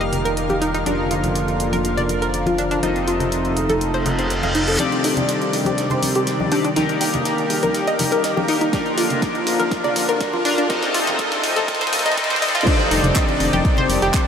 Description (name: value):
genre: progressive house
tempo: 122 BPM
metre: 4/4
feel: straight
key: unclear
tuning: A4 = 441 Hz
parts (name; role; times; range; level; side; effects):
- warm analog pad; sustained chords; 0.0-14.3 s; C3 to D5; -25 LUFS; right 2 dB; chorus, sidechain pumping
- analog pluck; arpeggios; 0.0-14.1 s; D4 to C6; -22 LUFS; equal; chorus, sidechain pumping, tape echo
- chorused polysynth; stabs; 0.0-14.3 s; C4 to Eb5; -22 LUFS; left 2 dB; phaser, sidechain pumping, tape echo
- dark detuned saw bass; bass; 0.0-14.1 s; F1 to C2; -29 LUFS; equal; sidechain pumping, high-pass filter
- deep house drum kit; drums; 0.0-14.2 s; crash cymbal, handclaps, hi-hat, snare drum; -26 LUFS; equal; sidechain pumping on hats, high-pass filter on hats, high-pass filter on snare, sidechain pumping on cymbals, high-pass filter on cymbals, high-pass filter on room
- backwards swelling texture; texture; 0.0-4.8 s; F4 to F5; -35 LUFS; right 2 dB; none
- congas and bongos; percussion; 0.1-14.0 s; none; -29 LUFS; left 2 dB; sidechain pumping on perc
- reverse cymbal and riser; sound effects; 4.0-12.7 s; none; -30 LUFS; right 1 dB; none
- electronic kick drum; drums; 8.7-14.2 s; none; -20 LUFS; equal; overdrive
room: wet huge ambient reverb, RT60 7.8 s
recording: dreamy mix soaked in reverb, high-pass filter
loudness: -17 LUFS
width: side -7 dB against mid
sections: 0.0-4.8 A section; 4.8-12.7 B section; 12.7-14.3 C section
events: reverse cymbal 4.0-4.8; build-up 4.8-12.7; drum fill 4.8-12.7; filter sweep on synth arpeggio sound 4.8-12.7; filter sweep 4.8-12.7; drop 12.7-14.3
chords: 0.0 Eb/F; 0.9 Bb/F; 2.8 F7; 4.8 Cmadd9/F; 6.8 Eb/F; 8.7 Bb/F; 10.7 F7; 12.7 Cmadd9/F